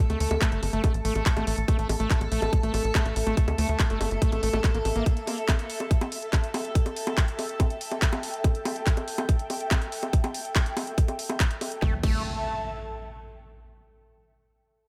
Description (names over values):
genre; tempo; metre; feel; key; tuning
psychedelic trance; 142 BPM; 4/4; straight; unclear; A4 = 440 Hz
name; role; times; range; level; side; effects
evolving wavetable pad; sustained chords; 0.0-11.8 s; A4; -38 LUFS; equal; phaser, built-in reverb, sidechain pumping
airy breathy pad; texture; 0.0-13.5 s; A4 to A5; -38 LUFS; equal; chorus, phaser, sidechain pumping
overdriven acid bass; riff; 0.1-5.0, 11.8-12.2 s; A3 to Bb3; -35 LUFS; equal; sidechain pumping, diffuse ambient delay
tight sequencer bass; bass; 0.1-5.0, 11.8-12.2 s; G1 to D2; -30 LUFS; equal; none
big-room dance drum kit; drums; 0.1-12.1 s; bongos, crash cymbal, handclaps, hi-hat, snare drum; -34 LUFS; equal; overdrive
electronic kick drum; drums; 0.4-12.1 s; none; -26 LUFS; equal; none
impact; sound effects; 11.9-13.5 s; none; -39 LUFS; equal; none
room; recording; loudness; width
light reverb, digital ambience; none; -26 LUFS; mono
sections
0.0-11.8 A section; 11.8-13.5 B section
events
none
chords
0.0 A5